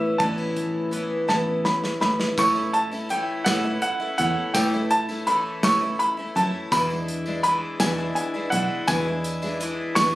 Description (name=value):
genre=indie folk with a building arrangement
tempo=55 BPM (dotted quarters)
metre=6/8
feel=straight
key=unclear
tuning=A4 = 440 Hz
part: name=clear upright piano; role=melody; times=0.0-10.2 s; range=E5 to C#6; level=-23 LUFS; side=right 1 dB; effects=none
part: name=fingerpicked steel-string acoustic guitar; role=accompaniment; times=0.0-2.3 s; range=E2 to E4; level=-33 LUFS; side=left 1 dB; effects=none
part: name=picked twelve-string acoustic guitar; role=accompaniment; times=0.0-10.2 s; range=E2 to E4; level=-27 LUFS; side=left 2 dB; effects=none
part: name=picked electric bass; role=bass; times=0.0-10.2 s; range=A1 to A2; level=-28 LUFS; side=right 1 dB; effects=none
part: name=natural country drum kit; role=drums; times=0.2-10.1 s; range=hi-hat, kick drum, snare drum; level=-28 LUFS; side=equal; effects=none
part: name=tambourine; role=percussion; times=2.4-10.1 s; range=none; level=-35 LUFS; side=equal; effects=none
room=studio reverb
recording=recorded on a phone in the room, club ambience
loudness=-21 LUFS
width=side -16 dB against mid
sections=0.0-2.4 A section; 2.4-10.2 B section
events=drum fill 1.3-2.4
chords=0.0 Aadd9; 2.4 A; 6.7 E7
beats=| 0.20 1.29 | 2.37 3.46 | 4.54 5.63 | 6.71 7.80 | 8.88 9.97